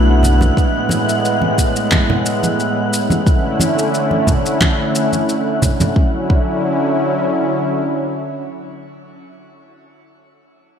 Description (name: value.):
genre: sunset chillout.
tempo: 89 BPM.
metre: 4/4.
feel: straight.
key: D lydian.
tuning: A4 = 437 Hz.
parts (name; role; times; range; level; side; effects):
nylon-string guitar; accompaniment; 0.0-0.5 s; A3 to C#5; -25 LUFS; left 2 dB; none.
lush unison pad; sustained chords; 0.0-9.4 s; A2 to E4; -17 LUFS; equal; chorus, shimmer reverb.
round analog bass; bass; 0.0-0.5 s; B1; -12 LUFS; equal; none.
wind-like tuned noise texture; texture; 0.0-6.0 s; F#5 to F#6; -25 LUFS; right 1 dB; built-in reverb, shimmer reverb.
electronic shaker and handclaps; drums; 0.2-5.9 s; none; -22 LUFS; left 1 dB; small room reverb.
congas; percussion; 0.2-5.9 s; none; -21 LUFS; right 1 dB; none.
electronic kick drum; drums; 0.6-6.5 s; none; -15 LUFS; equal; small room reverb.
room: wet lush hall reverb, RT60 1.7 s.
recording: big arena sound.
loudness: -14 LUFS.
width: side -8 dB against mid.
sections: 0.0-6.0 A section; 6.0-8.7 B section.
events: none.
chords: 0.0 E7sus4; 0.6 F#m11; 3.3 Dmaj9.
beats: | 0.57 1.24 1.92 2.59 | 3.27 3.94 4.62 5.29 | 5.96 6.64 7.31 7.99.